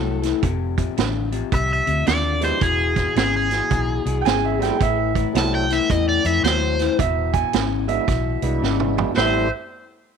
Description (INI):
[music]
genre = electric blues shuffle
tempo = 110 BPM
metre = 4/4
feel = swing 64% on 8ths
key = A minor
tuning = A4 = 435 Hz
[part]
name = crunchy overdriven guitar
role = melody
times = 0.0-9.5 s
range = G#4 to A5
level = -22 LUFS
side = equal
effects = phaser
[part]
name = electric guitar through a small old amp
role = riff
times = 0.0-9.5 s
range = E2 to C5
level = -24 LUFS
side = left 15 dB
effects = none
[part]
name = vintage muted fingered electric bass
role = bass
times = 0.0-9.5 s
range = E1 to F2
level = -24 LUFS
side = equal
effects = none
[part]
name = vintage drum kit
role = drums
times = 0.2-9.3 s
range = hi-hat, kick drum, snare drum, toms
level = -24 LUFS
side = right 6 dB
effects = none
[part]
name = tonewheel organ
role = accompaniment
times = 2.4-9.5 s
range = G3 to G4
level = -27 LUFS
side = right 14 dB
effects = slow rotary speaker, overdrive, chorus vibrato
[part]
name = bright upright piano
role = second line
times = 4.2-9.5 s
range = E5 to G#5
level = -24 LUFS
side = right 15 dB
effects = none
[sound]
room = light reverb, studio reverb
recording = 1960s-style stereo with parts hard left and right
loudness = -18 LUFS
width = side -6 dB against mid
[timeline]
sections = 0.0-9.2 A section; 9.2-10.2 B section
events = drum fill 8.6-9.2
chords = 0.4 F7; 2.6 E; 4.8 Am7; 7.0 E7; 9.2 Am7